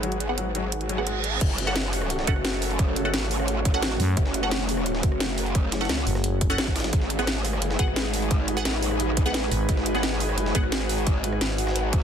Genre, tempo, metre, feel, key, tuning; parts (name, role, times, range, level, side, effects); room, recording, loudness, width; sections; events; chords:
dark technical drum and bass; 174 BPM; 4/4; straight; F# dorian; A4 = 442 Hz
deep dark ambient pad; sustained chords; 0.0-12.0 s; G#3 to C#5; -31 LUFS; equal; chorus, built-in reverb, sidechain pumping
felt-muted upright piano; arpeggios; 0.0-1.1 s; F#3 to G#3; -34 LUFS; left 4 dB; sidechain pumping, dub echo
growl bass; bass; 0.0-12.0 s; F#1 to C#2; -28 LUFS; equal; chorus, tube saturation
drum and bass drum kit; drums; 0.0-12.0 s; crash cymbal, hi-hat, rim click, snare drum; -29 LUFS; equal; overdrive
airy breathy pad; texture; 0.0-12.0 s; C#4 to F#5; -33 LUFS; equal; chorus, sidechain pumping
filtered dub chord stab; stabs; 0.3-10.6 s; B3 to F#5; -32 LUFS; right 2 dB; phaser, dub echo
reverse cymbal; sound effects; 0.9-1.4 s; -32 LUFS; right 8 dB
breakbeat sampler-style drum kit; drums; 1.4-12.0 s; hi-hat, snare drum; -36 LUFS; left 1 dB
electronic kick drum; drums; 1.4-12.0 s; -24 LUFS; equal
growling FM bass; bass; 4.0-6.6, 9.5-9.7 s; F#1 to F#2; -24 LUFS; equal
light reverb, digital ambience; dense, heavily limited modern master; -22 LUFS; side -8 dB against mid
0.0-1.4 A section; 1.4-12.0 B section
reverse cymbal 0.9-1.4; drop 1.4-12.0
0.0 G#m7; 1.4 F#m; 6.9 G#m7